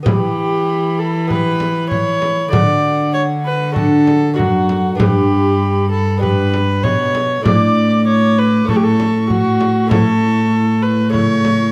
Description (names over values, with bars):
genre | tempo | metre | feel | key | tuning
classical, renaissance-style consort dance | 98 BPM | 4/4 | straight | unclear | A4 = 442 Hz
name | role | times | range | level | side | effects
lute | accompaniment | 0.0-11.7 s | F#2 to G4 | -24 LUFS | equal | none
mellow alto recorder | melody | 0.1-11.7 s | F#5 to D6 | -29 LUFS | equal | none
warm viola | second line | 0.1-11.7 s | F#4 to D5 | -21 LUFS | equal | none
dark cello | bass | 0.1-11.7 s | F#2 to E3 | -19 LUFS | equal | none
frame drum | percussion | 0.1-11.7 s | none | -21 LUFS | equal | none
room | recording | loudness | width
moderate stone room reverb, RT60 1.2 s | none | -15 LUFS | mono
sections
0.1-11.7 A section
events
none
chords
0.1 Em; 2.5 D; 5.0 G; 7.5 Asus4; 8.7 A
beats
| 0.06 0.68 1.30 1.91 | 2.53 3.15 3.76 4.38 | 4.99 5.61 6.22 6.84 | 7.46 8.07 8.69 9.30 | 9.91 10.53 11.14